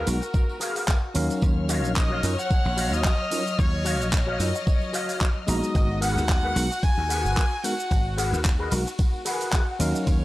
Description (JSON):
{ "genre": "nu-disco, nu disco", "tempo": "111 BPM", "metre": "4/4", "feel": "swing 55% on 16ths", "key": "unclear", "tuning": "A4 = 440 Hz", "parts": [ { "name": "brilliant trumpet section", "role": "melody", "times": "0.0-8.2 s", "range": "Bb4 to Ab5", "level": "-30 LUFS", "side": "equal", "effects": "tape echo" }, { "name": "rich studio string section", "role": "sustained chords", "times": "0.0-10.2 s", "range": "Gb3 to F6", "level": "-33 LUFS", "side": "left 2 dB", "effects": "vintage 12-bit sampler grit, sidechain pumping" }, { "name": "electric guitar with an envelope filter", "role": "riff", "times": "0.0-10.1 s", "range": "Gb4 to Ab5", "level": "-32 LUFS", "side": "left 2 dB", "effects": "ensemble chorus, vintage 12-bit sampler grit" }, { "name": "dry thumbed slap bass", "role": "bass", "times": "0.0-10.2 s", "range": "Ab1 to Gb2", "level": "-26 LUFS", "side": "equal", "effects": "none" }, { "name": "tine electric piano", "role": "accompaniment", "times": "0.1-10.2 s", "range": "Gb3 to Bb5", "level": "-30 LUFS", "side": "equal", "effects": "medium stereo tremolo, sidechain pumping" }, { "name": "pop drum kit", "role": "drums", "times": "0.1-10.2 s", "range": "handclaps, hi-hat, ride cymbal, shaker", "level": "-31 LUFS", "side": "right 1 dB", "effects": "overdrive" }, { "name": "tambourine", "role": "percussion", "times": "0.1-10.2 s", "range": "none", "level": "-43 LUFS", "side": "right 5 dB", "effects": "none" }, { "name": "electronic kick drum", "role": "drums", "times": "0.3-10.2 s", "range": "none", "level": "-22 LUFS", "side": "equal", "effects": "overdrive" } ], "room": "digital ambience", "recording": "dry, gritty hardware recording, transformer saturation, lossy compression artefacts", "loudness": "-22 LUFS", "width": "side -17 dB against mid", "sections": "0.0-10.2 A section", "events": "clean electric guitar fill 9.0-10.1", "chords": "0.0 Abm9; 1.4 Ebm9; 5.7 Abm9" }